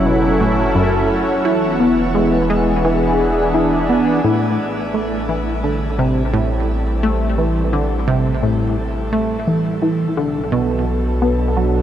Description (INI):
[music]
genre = ambient, sequencer-driven space music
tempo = 86 BPM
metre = 4/4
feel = straight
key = A dorian from 4.2 s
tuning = A4 = 440 Hz
[part]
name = sweeping resonant pad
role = sustained chords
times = 0.0-11.8 s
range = A2 to A4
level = -19 LUFS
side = equal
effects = chorus
[part]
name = round analog bass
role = bass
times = 0.0-11.8 s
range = E1 to B1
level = -23 LUFS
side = equal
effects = none
[part]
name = bubbling stepped-filter texture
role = texture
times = 0.0-4.3 s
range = F#5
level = -32 LUFS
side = right 3 dB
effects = chorus, built-in reverb
[part]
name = tight sequenced synth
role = riff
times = 0.1-11.8 s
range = F#2 to E4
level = -18 LUFS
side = equal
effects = chorus, tape echo
[sound]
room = wet shimmer reverb, RT60 8.4 s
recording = dark, warm production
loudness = -15 LUFS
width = side -10 dB against mid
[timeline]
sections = 0.0-4.2 A section; 4.2-11.8 B section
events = fade-in on analog synth pad 4.2-11.8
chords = 0.0 F#m7; 1.4 E7; 4.2 Am7; 9.8 Bm7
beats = 0.06 0.75 | 1.45 2.15 2.85 3.54 | 4.24 4.94 5.64 6.33 | 7.03 7.73 8.43 9.12 | 9.82 10.52 11.22